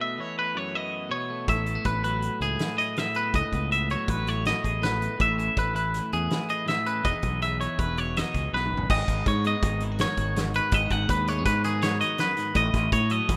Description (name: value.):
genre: math rock and midwest emo.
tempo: 162 BPM.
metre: 5/4.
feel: straight.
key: unclear.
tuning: A4 = 440 Hz.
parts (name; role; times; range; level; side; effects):
twelve-string electric guitar; accompaniment; 0.0-13.4 s; E2 to G#4; -35 LUFS; equal; spring reverb.
twangy electric guitar; arpeggios; 0.0-13.4 s; G#4 to F#5; -29 LUFS; equal; spring reverb.
growling fingered electric bass; bass; 1.5-13.4 s; E1 to A2; -31 LUFS; equal; overdrive.
loose indie drum kit; drums; 1.5-13.4 s; crash cymbal, hi-hat, kick drum, snare drum, toms; -32 LUFS; equal; none.
room: small room reverb.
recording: rough home demo mix.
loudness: -26 LUFS.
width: mono.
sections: 0.0-8.9 A section; 8.9-13.4 B section.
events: drum fill 8.5-8.9.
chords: 0.0 B7sus4; 1.5 F#m11/A; 5.2 Amaj9; 7.1 Emaj9; 8.9 G#m7; 12.6 F#m7/A.